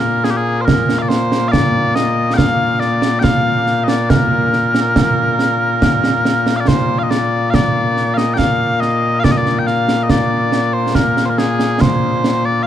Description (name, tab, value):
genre	scottish traditional, Scottish pipe music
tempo	70 BPM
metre	3/4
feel	straight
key	Bb mixolydian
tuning	A4 = 440 Hz
part	mellow small bagpipes	melody	0.0-12.7 s	Bb2 to G5	-15 LUFS	left 1 dB	none
part	concert snare drum and concert bass drum	drums	0.2-12.4 s	none	-17 LUFS	right 2 dB	none
room	light reverb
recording	dark, warm production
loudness	-13 LUFS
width	side -10 dB against mid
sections	0.0-6.7 A section; 6.7-12.7 B section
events	none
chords	none